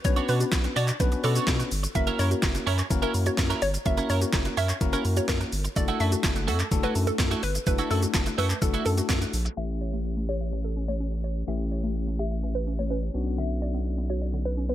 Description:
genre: dance-pop.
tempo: 126 BPM.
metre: 4/4.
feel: straight.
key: unclear.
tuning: A4 = 441 Hz.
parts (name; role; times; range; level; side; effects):
hollow square pluck; melody; 0.0-14.7 s; A4 to E5; -33 LUFS; equal; chorus, sidechain pumping, tape echo.
bell-like tine electric piano; accompaniment; 0.0-14.7 s; A3 to B4; -32 LUFS; left 5 dB; auto-pan, sidechain pumping.
mallet-like synth pluck; arpeggios; 0.0-14.7 s; D3 to F#6; -38 LUFS; right 2 dB; chorus, sidechain pumping, tape echo.
twelve-string electric guitar; riff; 0.0-9.5 s; A3 to C#5; -32 LUFS; right 8 dB; analog chorus.
saturated sub bass; bass; 0.0-14.7 s; F#1 to B2; -28 LUFS; equal; sidechain pumping.
pop drum kit; drums; 0.0-9.6 s; handclaps, hi-hat, kick drum, shaker, snare drum; -28 LUFS; equal; overdrive.
room: light reverb.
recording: low-pass filter.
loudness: -24 LUFS.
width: side -12 dB against mid.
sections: 0.0-9.6 A section; 9.6-14.7 B section.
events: drop 0.0-9.6; filter sweep 9.6-14.7.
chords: 0.0 Bmadd9; 2.0 F#7; 5.8 Dadd9/F#; 9.6 A7; 13.1 Bmadd9.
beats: | 0.05 0.53 1.00 1.48 | 1.95 2.43 2.91 3.38 | 3.86 4.33 4.81 5.29 | 5.76 6.24 6.72 7.19 | 7.67 8.14 8.62 9.10 | 9.57 10.05 10.53 11.00 | 11.48 11.95 12.43 12.91 | 13.38 13.86 14.34.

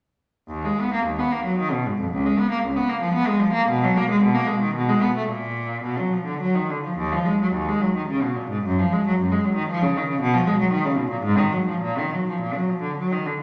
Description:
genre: classical, baroque-style suite movement for unaccompanied cello.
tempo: 95-119 BPM.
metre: 3/4.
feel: rubato.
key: Eb minor.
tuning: A4 = 439 Hz.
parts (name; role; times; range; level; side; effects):
warm cello; solo; 0.5-13.4 s; Db2 to Cb4; -22 LUFS; equal; none.
room: wet recital hall reverb, RT60 1.3 s.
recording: none.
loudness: -23 LUFS.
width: mono.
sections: 0.5-13.4 A section.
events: none.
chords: none.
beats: | 0.50 1.07 1.59 | 2.12 2.64 3.16 | 3.70 4.23 4.75 | 5.30 5.85 6.41 | 6.98 7.54 8.08 | 8.64 9.18 9.69 | 10.21 10.72 11.24 | 11.82 12.41 12.98.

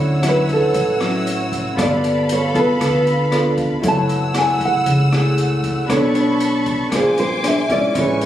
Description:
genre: bossa nova.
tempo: 116 BPM.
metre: 4/4.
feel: straight.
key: unclear.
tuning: A4 = 439 Hz.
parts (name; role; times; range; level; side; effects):
nylon-string guitar; melody; 0.0-8.3 s; Ab4 to A5; -19 LUFS; equal; none.
nylon-string guitar; accompaniment; 0.0-8.3 s; A2 to C#5; -20 LUFS; left 1 dB; none.
warm grand piano; accompaniment; 0.0-8.3 s; C#4 to D5; -27 LUFS; right 4 dB; none.
warm studio string section; sustained chords; 0.0-8.3 s; A4 to E6; -24 LUFS; equal; none.
upright bass; bass; 0.0-8.3 s; F#1 to D2; -23 LUFS; equal; none.
open jazz drum kit; drums; 0.2-8.3 s; hi-hat, kick drum, rim click; -27 LUFS; equal; none.
room: moderate large studio reverb, RT60 1.2 s.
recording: recorded on a phone in the room, studio reverb, compression.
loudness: -15 LUFS.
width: side -12 dB against mid.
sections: 0.0-8.3 A section.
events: nylon-string guitar solo 0.0-8.3.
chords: 0.0 Dmaj9; 1.8 G9; 3.8 F#m9; 5.9 Bm9; 6.9 Bb9.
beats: 0.23 0.74 1.26 | 1.77 2.29 2.81 3.32 | 3.84 4.35 4.87 5.38 | 5.90 6.41 6.92 7.44 | 7.96.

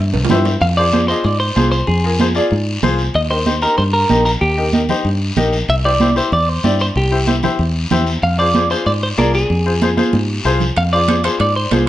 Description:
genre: latin, cumbia.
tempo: 189 BPM.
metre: 4/4.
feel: straight.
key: F dorian.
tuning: A4 = 439 Hz.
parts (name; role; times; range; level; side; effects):
fingered electric bass; bass; 0.0-11.9 s; Bb1 to Ab2; -18 LUFS; equal; none.
timbales; percussion; 0.1-0.5, 10.8-11.9 s; none; -22 LUFS; right 4 dB; none.
bright upright piano; accompaniment; 0.3-11.9 s; Eb4 to Eb5; -20 LUFS; left 3 dB; none.
congas; percussion; 0.3-11.9 s; none; -20 LUFS; right 3 dB; none.
guiro; percussion; 0.3-11.9 s; none; -27 LUFS; left 3 dB; none.
semi-hollow electric guitar; melody; 0.6-11.9 s; G4 to F5; -18 LUFS; right 1 dB; spring reverb.
room: moderate large studio reverb, RT60 0.9 s.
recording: nothing above 10.7 kHz.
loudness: -13 LUFS.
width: side -14 dB against mid.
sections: 0.6-11.9 A section.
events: drum fill 0.1-0.6, 9.8-10.8.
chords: 0.0 C; 0.6 Fm; 3.1 Eb; 5.7 C; 8.2 Fm.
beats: 0.29 | 0.61 0.93 1.25 1.56 | 1.88 2.20 2.51 2.83 | 3.15 3.46 3.78 4.10 | 4.42 4.73 5.05 5.37 | 5.69 6.00 6.32 6.64 | 6.96 7.27 7.59 7.91 | 8.23 8.54 8.86 9.18 | 9.50 9.81 10.13 10.45 | 10.77 11.08 11.40 11.72.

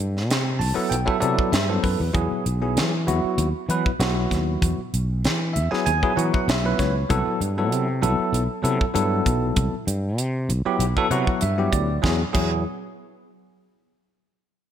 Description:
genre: electric jazz fusion.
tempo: 97 BPM.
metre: 4/4.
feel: swing 54% on 16ths.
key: unclear.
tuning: A4 = 441 Hz.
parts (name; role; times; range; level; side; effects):
sustaining fretless electric bass; bass; 0.0-12.6 s; B1 to E3; -24 LUFS; equal; none.
crisp fusion drum kit; drums; 0.2-12.5 s; crash cymbal, hi-hat, kick drum, snare drum; -26 LUFS; equal; gated reverb.
bell-like tine electric piano; accompaniment; 0.6-12.6 s; F#3 to A5; -23 LUFS; equal; medium stereo tremolo.
room: moderate lush hall reverb, RT60 1.6 s, small room ambience.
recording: bright 1980s-style digital production.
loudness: -20 LUFS.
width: side -9 dB against mid.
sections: 0.0-12.0 A section; 12.0-14.5 B section.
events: tine electric piano fill 0.3-2.2, 5.2-7.1, 10.8-12.0.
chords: 0.0 Cmaj7; 2.2 Eadd9; 7.1 Cmaj7; 12.0 Eadd9.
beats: 0.30 0.92 1.54 | 2.15 2.77 3.39 4.01 | 4.63 5.25 5.86 6.48 | 7.10 7.72 8.34 8.95 | 9.57 10.19 10.81 11.42 | 12.04.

